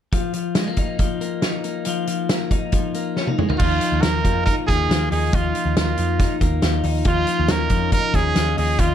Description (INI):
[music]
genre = jangly indie pop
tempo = 139 BPM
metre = 4/4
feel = straight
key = unclear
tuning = A4 = 439 Hz
[part]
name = twelve-string electric guitar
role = arpeggios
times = 0.1-8.9 s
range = F3 to Eb4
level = -24 LUFS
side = left 5 dB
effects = none
[part]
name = loose indie drum kit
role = drums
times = 0.1-8.9 s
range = crash cymbal, hi-hat, kick drum, snare drum, toms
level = -21 LUFS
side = equal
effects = none
[part]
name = bright trumpet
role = melody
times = 3.6-8.9 s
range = F4 to Bb4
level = -22 LUFS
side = right 4 dB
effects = slapback echo
[part]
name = vintage muted picked electric bass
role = bass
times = 3.6-8.9 s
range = Eb2 to F2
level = -22 LUFS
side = right 1 dB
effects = none
[sound]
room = light reverb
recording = dark, warm production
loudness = -18 LUFS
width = side -10 dB against mid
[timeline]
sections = 0.1-3.6 A section; 3.6-8.9 B section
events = drum fill 3.2-3.6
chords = 0.1 Ebsus2; 7.1 Bbm/Eb